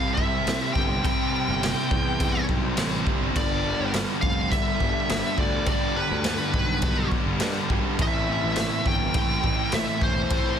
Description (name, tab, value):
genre	quiet-loud alternative rock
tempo	104 BPM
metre	4/4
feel	straight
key	unclear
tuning	A4 = 440 Hz
part	high-gain lead guitar	melody	0.0-10.6 s	B4 to G5	-28 LUFS	equal	distortion
part	distorted electric guitar	riff	0.0-10.6 s	G2 to C4	-32 LUFS	right 1 dB	overdrive
part	thick fuzz guitar	riff	0.0-10.6 s	G2 to C5	-32 LUFS	left 10 dB	distortion
part	thick fuzz guitar	riff	0.0-10.6 s	G2 to C5	-32 LUFS	right 12 dB	distortion
part	fuzz picked electric bass	bass	0.2-10.3 s	E1 to G2	-31 LUFS	equal	overdrive
part	raw garage drum kit	drums	0.2-10.4 s	crash cymbal, kick drum, snare drum	-26 LUFS	equal	none
room	little or no reverb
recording	dense, heavily limited modern master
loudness	-22 LUFS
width	side -8 dB against mid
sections	0.0-10.6 A section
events	none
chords	0.0 C; 3.4 G; 8.0 Am7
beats	0.47 | 1.05 1.62 2.20 2.78 | 3.36 3.94 4.52 5.09 | 5.67 6.25 6.83 7.41 | 7.99 8.57 9.15 9.72 | 10.30